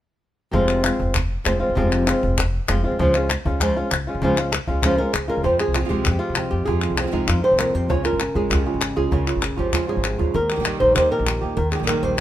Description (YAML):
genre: flamenco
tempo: 196 BPM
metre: 4/4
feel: straight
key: F minor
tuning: A4 = 438 Hz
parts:
  - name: flamenco guitar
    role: melody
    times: 0.5-12.2 s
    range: F2 to Db5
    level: -21 LUFS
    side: equal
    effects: none
  - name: upright bass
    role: bass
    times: 0.5-12.1 s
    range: F1 to F2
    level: -25 LUFS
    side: equal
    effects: none
  - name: cajon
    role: percussion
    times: 0.5-12.2 s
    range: none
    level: -28 LUFS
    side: equal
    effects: none
  - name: palmas hand claps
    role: percussion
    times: 0.7-12.2 s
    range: none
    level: -26 LUFS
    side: left 5 dB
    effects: none
  - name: flamenco guitar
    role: stabs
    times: 5.4-12.2 s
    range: C3 to G4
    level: -27 LUFS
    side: right 7 dB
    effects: none
room: light reverb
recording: minimal, uncompressed stereo recording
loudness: -18 LUFS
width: side -12 dB against mid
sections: 0.5-5.4 A section; 5.4-12.2 B section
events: drum fill 9.9-10.3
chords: 0.5 Fm; 3.0 Db; 5.4 Fm; 7.9 Db; 10.3 Eb